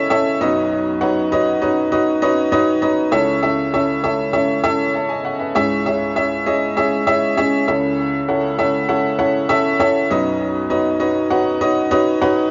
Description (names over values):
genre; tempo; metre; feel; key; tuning
pop; 99 BPM; 4/4; straight; unclear; A4 = 443 Hz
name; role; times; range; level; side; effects
clear upright piano; solo; 0.0-12.5 s; B1 to A5; -18 LUFS; equal; analog delay
room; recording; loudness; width
moderate spring reverb, RT60 1.9 s, small room ambience; home recording on cassette, nothing above 7.5 kHz; -18 LUFS; mono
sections
0.0-12.5 A section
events
none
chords
0.4 Badd9; 3.1 A/C#; 5.6 C#m; 7.7 A/C#; 10.1 Badd9